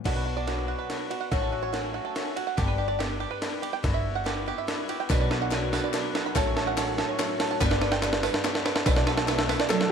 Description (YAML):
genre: indie folk with a building arrangement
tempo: 143 BPM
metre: 3/4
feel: straight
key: B minor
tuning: A4 = 441 Hz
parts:
  - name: fingerpicked steel-string acoustic guitar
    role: accompaniment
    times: 0.0-1.3 s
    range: B3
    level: -45 LUFS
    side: left 10 dB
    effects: none
  - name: picked twelve-string acoustic guitar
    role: accompaniment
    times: 0.0-9.9 s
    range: G2 to A4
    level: -32 LUFS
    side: left 13 dB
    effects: none
  - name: bluegrass banjo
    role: arpeggios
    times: 0.1-9.9 s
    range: F#4 to B5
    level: -32 LUFS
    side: right 12 dB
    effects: none
  - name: upright bass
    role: bass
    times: 0.1-9.5 s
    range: G1 to B1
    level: -32 LUFS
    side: equal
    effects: none
  - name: breakbeat sampler-style drum kit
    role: drums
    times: 0.1-9.9 s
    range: crash cymbal, kick drum, ride cymbal, snare drum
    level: -28 LUFS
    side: equal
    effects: none
  - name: felt-muted upright piano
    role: accompaniment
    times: 5.1-9.9 s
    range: G1 to E5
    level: -34 LUFS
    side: right 10 dB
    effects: none
  - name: group handclap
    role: percussion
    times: 5.1-9.9 s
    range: none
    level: -38 LUFS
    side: left 15 dB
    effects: none
  - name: tambourine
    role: percussion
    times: 5.1-9.6 s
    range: none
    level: -45 LUFS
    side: right 12 dB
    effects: none
  - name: clear upright piano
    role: melody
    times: 9.7-9.9 s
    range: A4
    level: -25 LUFS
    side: equal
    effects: none
  - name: warm cello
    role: second line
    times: 9.7-9.9 s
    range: F#3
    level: -27 LUFS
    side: right 13 dB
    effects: none
room: light reverb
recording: 1960s-style stereo with parts hard left and right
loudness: -24 LUFS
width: side -7 dB against mid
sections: 0.1-9.9 A section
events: build-up 0.1-9.9; drum fill 0.1-9.9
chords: 0.1 Bm; 1.3 F#m/A; 2.6 G; 3.8 Emadd9/G; 5.1 Bm; 6.4 F#m/A; 7.6 G; 8.9 Bm7